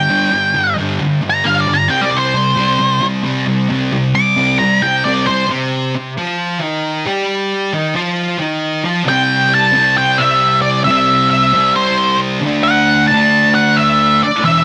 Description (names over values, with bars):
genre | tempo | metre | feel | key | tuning
rock | 134 BPM | 4/4 | straight | unclear | A4 = 440 Hz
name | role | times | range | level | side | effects
octave-fuzz lead guitar | melody | 0.0-5.5, 9.1-14.6 s | C5 to D6 | -15 LUFS | equal | distortion
thick fuzz guitar | riff | 0.0-14.6 s | E2 to G4 | -18 LUFS | equal | distortion
room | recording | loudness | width
moderate plate reverb, RT60 2.6 s | none | -14 LUFS | mono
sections
0.0-5.5 A section; 5.5-9.1 B section; 9.1-14.6 C section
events
lead electric guitar solo 0.0-5.5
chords
0.0 G5; 1.9 C5; 9.1 C; 12.4 D